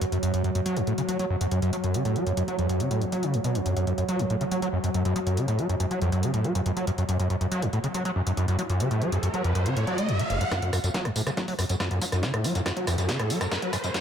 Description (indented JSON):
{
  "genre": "driving peak-time techno",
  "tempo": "140 BPM",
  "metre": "4/4",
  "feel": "straight",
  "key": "F# harmonic minor",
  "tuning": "A4 = 440 Hz",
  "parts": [
    { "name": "screaming distorted acid line", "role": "riff", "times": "0.0-14.0 s", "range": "F#1 to A3", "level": "-25 LUFS", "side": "equal", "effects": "distortion, wide subtle chorus, sidechain pumping, dub echo" },
    { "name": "deep dark ambient pad", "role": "drone", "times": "0.0-10.6 s", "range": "F#3", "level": "-32 LUFS", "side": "right 2 dB", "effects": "chorus, built-in reverb, sidechain pumping" },
    { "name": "punchy analog drum machine", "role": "drums", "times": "0.0-14.0 s", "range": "hi-hat, rim click, snare drum, tambourine", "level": "-34 LUFS", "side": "equal", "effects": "high-pass filter on snare, high-pass filter on hats, high-pass filter on perc, dub echo" },
    { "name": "riser", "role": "sound effects", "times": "8.0-14.0 s", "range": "none", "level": "-33 LUFS", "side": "right 1 dB", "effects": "none" },
    { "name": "electronic kick drum", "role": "drums", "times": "10.5-14.0 s", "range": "none", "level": "-33 LUFS", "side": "equal", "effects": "high-pass filter on kick" }
  ],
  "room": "moderate echo chamber reverb, RT60 2.2 s",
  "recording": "echo-heavy mix, high-pass filter",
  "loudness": "-24 LUFS",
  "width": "side -8 dB against mid",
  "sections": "0.0-10.5 A section; 10.5-14.0 B section",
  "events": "riser 8.0-10.5, 10.5-14.0; build-up 10.5-14.0; drum fill 10.5-14.0",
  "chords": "0.0 F#5"
}